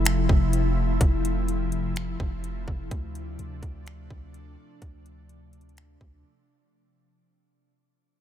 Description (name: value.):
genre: hip hop, atmospheric cloud-rap.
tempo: 126 BPM.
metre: 4/4.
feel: half-time.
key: unclear.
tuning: A4 = 439 Hz.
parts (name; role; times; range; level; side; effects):
ethereal airy pad; sustained chords; 0.0-6.7 s; C3 to E4; -30 LUFS; left 2 dB; ensemble chorus, built-in reverb, sidechain pumping.
long sustained 808-style bass; bass; 0.0-6.2 s; F1 to D2; -29 LUFS; equal; none.
trap drum kit; drums; 0.1-6.1 s; finger snaps, hi-hat, kick drum; -25 LUFS; equal; none.
room: little or no reverb.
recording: none.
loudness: -24 LUFS.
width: side -11 dB against mid.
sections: 0.0-6.7 A section.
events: fade-out 0.0-6.7; break 6.2-6.7.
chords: 0.0 Fmaj7; 2.9 Dm7.